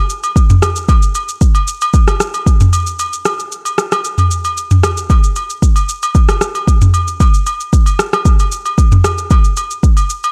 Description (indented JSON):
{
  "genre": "amapiano",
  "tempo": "114 BPM",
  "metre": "4/4",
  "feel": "straight",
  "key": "none",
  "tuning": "none",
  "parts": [
    { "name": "afro-pop drum kit", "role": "drums", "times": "0.1-10.3 s", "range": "kick drum, rim click, shaker, toms", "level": "-13 LUFS", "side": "equal", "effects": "none" },
    { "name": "agogo bells", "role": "percussion", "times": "0.2-10.3 s", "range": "none", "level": "-22 LUFS", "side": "equal", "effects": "none" }
  ],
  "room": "digital ambience",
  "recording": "none",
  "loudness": "-13 LUFS",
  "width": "mono",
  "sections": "0.0-10.3 A section",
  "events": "break 3.0-5.1",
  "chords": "none",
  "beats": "0.36 | 0.89 1.41 1.94 2.46 | 2.99 3.52 4.04 4.57 | 5.10 5.62 6.15 6.68 | 7.20 7.73 8.26 8.78 | 9.31 9.83"
}